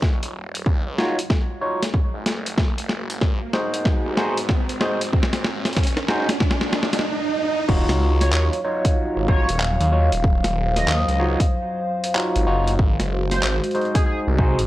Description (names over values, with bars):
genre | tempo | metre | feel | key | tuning
glitch hop | 94 BPM | 4/4 | swing 64% on 16ths | Eb dorian | A4 = 440 Hz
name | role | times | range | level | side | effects
dark analog pad | sustained chords | 0.0-14.7 s | Gb3 to F5 | -28 LUFS | equal | chorus, vintage 12-bit sampler grit, sidechain pumping
phased detuned saw bass | bass | 0.0-14.7 s | Eb1 to Eb2 | -23 LUFS | equal | phaser, high-pass filter
boom bap sampler-style drum kit | drums | 0.0-14.7 s | crash cymbal, handclaps, hi-hat, snare drum | -25 LUFS | equal | studio reverb
electronic kick drum | drums | 0.0-14.6 s | none | -20 LUFS | equal | overdrive, studio reverb
riser and swell | sound effects | 0.2-7.7 s | none | -29 LUFS | right 2 dB | none
overdriven tine electric piano | stabs | 1.0-14.6 s | Eb4 to Db5 | -25 LUFS | equal | phaser, sidechain pumping, analog delay
sync lead | melody | 8.2-14.2 s | Ab4 to Eb5 | -29 LUFS | equal | lush chorus, analog delay
room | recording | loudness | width
light reverb | dry, gritty hardware recording, cassette tape | -18 LUFS | side -15 dB against mid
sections
0.0-7.7 A section; 7.7-14.7 B section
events
build-up 0.0-7.7; drum fill 0.0-7.0; riser 0.2-7.7; swell 6.4-7.7; stop 7.0-7.7; drop 7.7-14.7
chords
0.0 Ebm9; 2.6 Ab7; 7.7 Ebm9; 12.8 Ab7